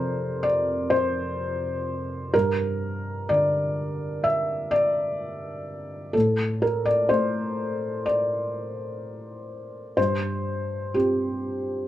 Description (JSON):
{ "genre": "neoclassical minimalist piano", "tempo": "63 BPM", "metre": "4/4", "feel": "rubato", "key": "F major", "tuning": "A4 = 442 Hz", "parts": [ { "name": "felt-muted upright piano", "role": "solo", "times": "0.0-11.9 s", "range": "F2 to E5", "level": "-23 LUFS", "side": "equal", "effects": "none" } ], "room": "moderate studio ambience, RT60 0.5 s", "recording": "band playing live in one room", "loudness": "-23 LUFS", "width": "side -13 dB against mid", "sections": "0.0-11.9 A section", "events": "none", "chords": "0.0 F5; 2.3 Gm; 6.1 N.C.; 10.0 Csus4/G" }